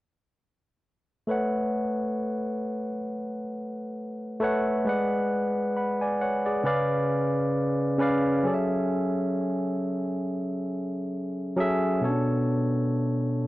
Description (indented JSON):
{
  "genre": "R&B",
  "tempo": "67 BPM",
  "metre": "4/4",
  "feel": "swing 55% on 16ths",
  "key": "A major",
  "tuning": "A4 = 440 Hz",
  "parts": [
    { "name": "barky tine electric piano", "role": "solo", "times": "1.3-13.5 s", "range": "B2 to B5", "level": "-25 LUFS", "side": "equal", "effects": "none" }
  ],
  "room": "light reverb",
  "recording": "dark, warm production",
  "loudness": "-25 LUFS",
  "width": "side -17 dB against mid",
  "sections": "1.3-13.5 A section",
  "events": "none",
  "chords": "1.3 A69; 4.9 G#m7b5; 6.6 C#7b9; 8.4 F#m7; 12.0 Bm9"
}